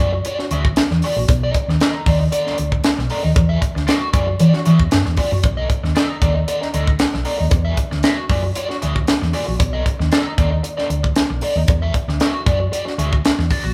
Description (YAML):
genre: funk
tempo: 115 BPM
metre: 4/4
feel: straight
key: unclear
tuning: A4 = 440 Hz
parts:
  - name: crunchy overdriven guitar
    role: accompaniment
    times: 0.0-13.7 s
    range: D#4 to E5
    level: -26 LUFS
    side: equal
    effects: wah, spring reverb
  - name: hollow-body short-scale fingered electric bass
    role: bass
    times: 0.0-13.7 s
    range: A#1 to E3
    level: -21 LUFS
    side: equal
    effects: none
  - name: tight funk drum kit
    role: drums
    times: 0.2-13.6 s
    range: hi-hat, kick drum, snare drum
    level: -21 LUFS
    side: equal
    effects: none
room: moderate large studio reverb, RT60 0.9 s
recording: band playing live in one room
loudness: -18 LUFS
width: mono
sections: 0.0-13.7 A section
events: none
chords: 0.0 E9; 1.3 B7#9; 3.4 E9; 5.4 B7#9; 7.5 E9; 9.6 B7#9; 11.7 E9